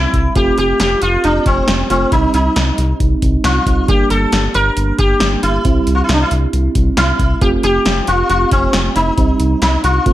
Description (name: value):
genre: synth-pop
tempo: 136 BPM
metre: 4/4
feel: straight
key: unclear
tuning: A4 = 444 Hz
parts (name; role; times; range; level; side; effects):
- sitar; melody; 0.0-10.1 s; C4 to Bb4; -16 LUFS; left 1 dB; slapback echo
- FM electric piano; accompaniment; 0.0-10.1 s; G3 to F4; -20 LUFS; right 4 dB; chorus
- round analog bass; bass; 0.0-10.1 s; F1 to C2; -17 LUFS; equal; none
- electro analog drum machine; drums; 0.1-10.1 s; hi-hat, kick drum, snare drum; -17 LUFS; equal; gated reverb
room: light reverb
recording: faint mains hum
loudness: -12 LUFS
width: side -14 dB against mid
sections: 0.0-10.1 A section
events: none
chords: 0.4 F; 2.1 Cm; 3.9 Gm; 5.7 C; 7.4 F; 9.2 Cm